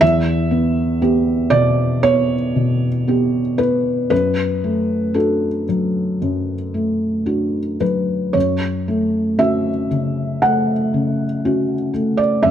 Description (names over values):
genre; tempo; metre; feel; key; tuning
neoclassical minimalist piano; 58 BPM; 4/4; rubato; unclear; A4 = 440 Hz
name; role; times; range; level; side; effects
felt-muted upright piano; solo; 0.0-12.5 s; E2 to F#5; -16 LUFS; equal; none
room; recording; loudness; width
light reverb; close, detailed microphones; -16 LUFS; side -10 dB against mid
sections
0.0-12.5 A section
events
none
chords
0.0 Em; 4.1 D/F#; 8.3 F#m